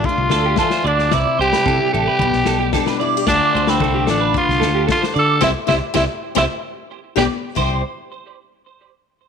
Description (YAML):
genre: highlife guitar band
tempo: 112 BPM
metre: 4/4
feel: straight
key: C major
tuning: A4 = 440 Hz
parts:
  - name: raspy tenor saxophone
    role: melody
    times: 0.0-7.2 s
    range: C4 to A4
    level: -19 LUFS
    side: right 1 dB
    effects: none
  - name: picked steel-string acoustic guitar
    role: accompaniment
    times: 0.0-7.8 s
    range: B2 to C5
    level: -22 LUFS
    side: left 13 dB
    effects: none
  - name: crunchy breakbeat drum kit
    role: drums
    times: 0.0-7.7 s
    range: crash cymbal, kick drum, snare drum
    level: -24 LUFS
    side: left 6 dB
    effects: none
  - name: fingered electric bass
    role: bass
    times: 0.2-7.8 s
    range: A1 to D3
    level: -22 LUFS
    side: equal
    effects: none
  - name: clean electric guitar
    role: arpeggios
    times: 0.3-7.8 s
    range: E4 to D5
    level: -22 LUFS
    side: right 12 dB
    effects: ensemble chorus, tape echo
room: light reverb, small room ambience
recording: 1960s-style stereo with parts hard left and right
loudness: -15 LUFS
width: side -6 dB against mid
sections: 0.0-7.6 A section; 7.6-9.3 B section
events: band accent 5.4-7.6; drum fill 6.5-7.6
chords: 0.0 Dm; 1.1 C; 2.2 G/B; 3.3 Dm; 5.4 C; 6.5 G; 7.6 C